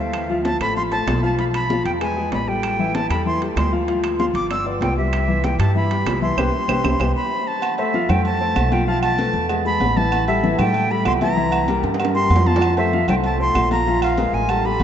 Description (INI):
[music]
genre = latin, salsa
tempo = 192 BPM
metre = 4/4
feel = straight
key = C major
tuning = A4 = 440 Hz
[part]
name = bright reedy jazz flute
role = melody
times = 0.0-14.8 s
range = E5 to E6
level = -22 LUFS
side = equal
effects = none
[part]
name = warm concert grand piano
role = accompaniment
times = 0.0-14.8 s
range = E3 to F5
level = -22 LUFS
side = left 3 dB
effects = none
[part]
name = upright bass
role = bass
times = 0.0-14.8 s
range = G1 to A2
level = -23 LUFS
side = right 1 dB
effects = none
[part]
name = claves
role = percussion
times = 0.1-14.6 s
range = none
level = -33 LUFS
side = right 7 dB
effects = none
[part]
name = congas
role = percussion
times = 0.1-14.8 s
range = none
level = -28 LUFS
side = left 1 dB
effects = none
[part]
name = timbales and agogo bells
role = percussion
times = 0.1-14.8 s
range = none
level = -27 LUFS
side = right 6 dB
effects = none
[sound]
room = wet cathedral reverb, RT60 6.2 s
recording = in a vast, echoing space, nothing above 7.8 kHz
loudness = -17 LUFS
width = side -9 dB against mid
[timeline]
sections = 0.0-7.6 A section; 7.6-14.8 B section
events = band accent 6.4-7.6; drum fill 6.8-7.6, 11.8-12.6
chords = 0.1 Dm7; 1.4 G7/B (rootless); 2.0 E; 2.6 A5; 3.9 Dm; 4.5 G; 5.1 Cmaj7; 7.6 Fmaj7; 8.9 Fmaj7#11/B; 9.5 E; 10.1 Am7; 11.4 C7; 12.6 Fmaj7; 13.9 Bb5